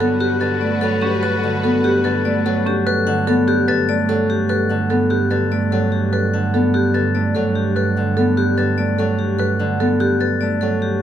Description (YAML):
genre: classical, minimalist pattern music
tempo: 147 BPM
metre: 4/4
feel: straight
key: G major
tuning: A4 = 440 Hz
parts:
  - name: vibraphone with medium hard mallets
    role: melody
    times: 0.0-11.0 s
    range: G4 to F#5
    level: -24 LUFS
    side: left 6 dB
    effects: none
  - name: Celtic harp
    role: accompaniment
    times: 0.0-11.0 s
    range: D3 to B3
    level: -20 LUFS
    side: left 1 dB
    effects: none
  - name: warm symphonic violin section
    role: sustained chords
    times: 0.0-2.6 s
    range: F#4 to B4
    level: -27 LUFS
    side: left 2 dB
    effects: none
  - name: marimba with medium hard mallets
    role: arpeggios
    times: 0.0-10.9 s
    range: C#4 to B4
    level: -25 LUFS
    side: right 8 dB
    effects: none
  - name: rich double bass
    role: bass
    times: 0.0-11.0 s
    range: G2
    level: -22 LUFS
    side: right 4 dB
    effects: none
  - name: glockenspiel with rubber mallets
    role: arpeggios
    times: 0.2-10.5 s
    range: F#6 to A6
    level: -25 LUFS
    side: left 4 dB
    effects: none
room: moderate large studio reverb, RT60 1.4 s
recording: none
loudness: -16 LUFS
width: side -10 dB against mid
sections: 0.0-11.0 A section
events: none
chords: 0.0 Gmaj9